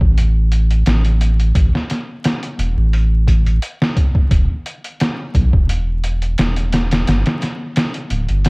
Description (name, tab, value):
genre	trip hop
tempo	87 BPM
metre	4/4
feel	swing 54% on 16ths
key	unclear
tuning	A4 = 440 Hz
part	round analog bass	bass	0.0-8.5 s	D1 to B1	-14 LUFS	equal	none
part	trip hop sampler-style drum kit	drums	0.0-8.5 s	hi-hat, kick drum, snare drum	-17 LUFS	equal	overdrive
room	light reverb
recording	worn, warbling old tape, cassette tape, vinyl crackle, warbly pitch drift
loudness	-14 LUFS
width	side -36 dB against mid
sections	0.0-8.5 A section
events	none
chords	none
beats	0.17 0.86 | 1.55 2.24 2.93 3.62 | 4.31 5.00 5.69 6.38 | 7.07 7.76 8.45